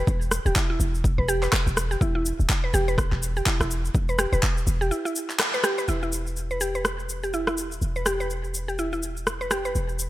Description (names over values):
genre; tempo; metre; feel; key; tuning
afro house; 124 BPM; 4/4; swing 58% on 16ths; E minor; A4 = 440 Hz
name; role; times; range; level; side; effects
mallet-like synth pluck; arpeggios; 0.0-9.7 s; E4 to B4; -28 LUFS; right 1 dB; chorus, vintage 12-bit sampler grit, sidechain pumping, tape echo
warm 808-style bass; bass; 0.0-10.1 s; D1 to E1; -27 LUFS; equal; sidechain pumping
electronic kick drum; drums; 0.1-4.5 s; none; -25 LUFS; equal; none
electronic shaker, rim click and handclaps; drums; 0.1-10.1 s; none; -27 LUFS; equal; none
room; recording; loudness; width
light reverb, digital ambience; none; -22 LUFS; side -15 dB against mid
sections
0.0-5.9 A section; 5.9-10.1 B section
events
band accent 5.4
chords
0.0 Em